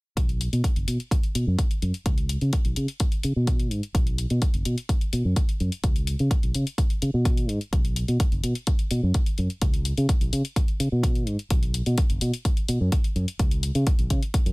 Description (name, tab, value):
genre	filtered disco house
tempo	127 BPM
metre	4/4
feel	straight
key	unclear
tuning	A4 = 435 Hz
part	modern bright fingered electric bass	bass	0.2-14.5 s	Gb1 to Db3	-24 LUFS	equal	sidechain pumping, low-pass filter
part	electronic hi-hat	drums	0.2-14.5 s	none	-34 LUFS	left 4 dB	sidechain pumping on hats
part	electronic kick drum	drums	0.2-14.4 s	none	-23 LUFS	equal	none
room	digital ambience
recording	none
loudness	-22 LUFS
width	side -26 dB against mid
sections	0.2-14.5 A section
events	filter sweep on fingered electric bass 0.2-14.5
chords	none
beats	| 0.17 0.64 1.11 1.59 | 2.06 2.53 3.00 3.48 | 3.95 4.42 4.89 5.37 | 5.84 6.31 6.78 7.26 | 7.73 8.20 8.67 9.14 | 9.62 10.09 10.56 11.04 | 11.51 11.98 12.45 12.93 | 13.40 13.87 14.34